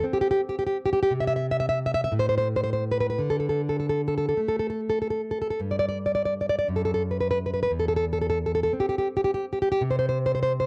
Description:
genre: romantic piece for solo classical guitar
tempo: 49-61 BPM (dotted quarters)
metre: 6/8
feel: rubato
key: unclear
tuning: A4 = 438 Hz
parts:
  - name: nylon-string guitar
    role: solo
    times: 0.0-10.7 s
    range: E2 to E5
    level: -26 LUFS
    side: equal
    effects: cassette tape
room: moderate small room reverb, RT60 0.5 s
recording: home recording on cassette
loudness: -26 LUFS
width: mono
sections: 0.0-10.7 A section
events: none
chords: 0.0 C5; 1.1 N.C.; 3.2 D5; 5.6 N.C.; 7.7 C/E; 9.8 N.C.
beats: 0.05 | 1.13 2.13 | 3.23 4.41 | 5.60 6.67 | 7.70 8.71 | 9.83

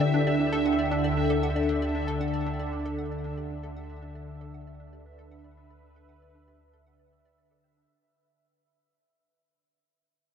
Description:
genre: ambient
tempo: 116 BPM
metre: 4/4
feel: straight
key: unclear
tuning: A4 = 440 Hz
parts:
  - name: phased analog pad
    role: sustained chords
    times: 0.0-7.9 s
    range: D3 to G5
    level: -28 LUFS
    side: equal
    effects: phaser, chorus
  - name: soft round pluck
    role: arpeggios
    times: 0.0-7.9 s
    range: D4 to A5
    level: -39 LUFS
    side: equal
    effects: none
  - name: hollow square pluck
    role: riff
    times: 0.0-7.8 s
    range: D4 to F#5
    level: -34 LUFS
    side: left 2 dB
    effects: lush chorus, ping-pong delay
  - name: round analog bass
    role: bass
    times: 0.0-7.9 s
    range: D2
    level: -36 LUFS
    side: equal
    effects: none
  - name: bubbling stepped-filter texture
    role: texture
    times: 0.0-7.9 s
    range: E5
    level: -36 LUFS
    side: right 1 dB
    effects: chorus, built-in reverb
room: wet huge ambient reverb, RT60 8.6 s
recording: in a vast, echoing space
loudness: -25 LUFS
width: side -7 dB against mid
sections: 0.0-7.9 A section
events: fade-out on synth arpeggio sound 0.0-7.9; fade-out 0.0-7.9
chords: 0.0 Dsus4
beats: 0.14 0.65 1.17 | 1.69 2.21 2.72 3.24 | 3.76 4.28 4.79 5.31 | 5.83 6.34 6.86 7.38

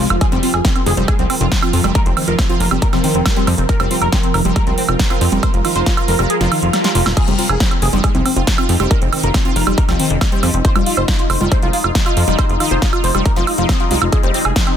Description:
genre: psychedelic trance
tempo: 138 BPM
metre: 4/4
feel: straight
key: unclear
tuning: A4 = 440 Hz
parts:
  - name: wide unison lead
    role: melody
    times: 0.0-14.7 s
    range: C4 to C5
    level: -21 LUFS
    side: equal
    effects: phaser, sidechain pumping, dub echo
  - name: evolving wavetable pad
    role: sustained chords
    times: 0.0-14.8 s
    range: F3 to Bb4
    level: -23 LUFS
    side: equal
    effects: phaser, built-in reverb, sidechain pumping
  - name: wide unison pluck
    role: riff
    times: 0.0-14.6 s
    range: Eb3 to F4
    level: -22 LUFS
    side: moving between left 7 dB and right 6 dB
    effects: auto-pan, sidechain pumping, digital delay
  - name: plucky analog bass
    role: bass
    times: 0.0-14.5 s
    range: Eb1 to F2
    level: -18 LUFS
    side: equal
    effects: none
  - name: big-room dance drum kit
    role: drums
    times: 0.1-14.8 s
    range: crash cymbal, hi-hat, snare drum, woodblock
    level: -20 LUFS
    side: right 3 dB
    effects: small room reverb
  - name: electronic kick drum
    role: drums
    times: 0.2-14.6 s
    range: none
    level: -16 LUFS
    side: equal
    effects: small room reverb
  - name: swell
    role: sound effects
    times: 6.5-7.2 s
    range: none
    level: -24 LUFS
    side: right 1 dB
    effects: none
room: light reverb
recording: dense, heavily limited modern master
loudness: -13 LUFS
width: side -9 dB against mid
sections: 0.0-14.8 A section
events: kick drops out 6.3-7.2; swell 6.5-7.2; drum fill 6.7-7.2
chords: 0.0 F5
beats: | 0.21 0.65 1.08 1.52 | 1.95 2.39 2.82 3.26 | 3.69 4.12 4.56 5.00 | 5.43 5.86 6.30 6.73 | 7.17 7.60 8.04 8.47 | 8.91 9.34 9.78 10.21 | 10.65 11.08 11.52 11.95 | 12.39 12.82 13.26 13.69 | 14.12 14.56

